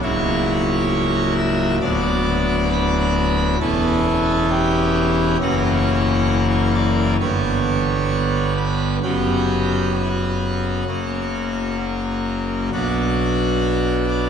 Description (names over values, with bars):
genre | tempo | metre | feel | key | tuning
classical, chorale-style piece for pipe organ | 66 BPM | 4/4 | rubato | unclear | A4 = 436 Hz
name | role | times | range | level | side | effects
pipe organ, full organ | solo | 0.0-14.3 s | C#1 to E5 | -17 LUFS | equal | none
room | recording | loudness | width
wet church reverb, RT60 3.3 s | none | -17 LUFS | side -7 dB against mid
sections
0.0-14.3 A section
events
none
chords
0.0 F#7/C#; 1.8 Bm/D; 3.6 C#m7b5/E; 5.4 F#7; 7.2 G; 9.0 F#sus4; 10.9 F#; 12.7 Bm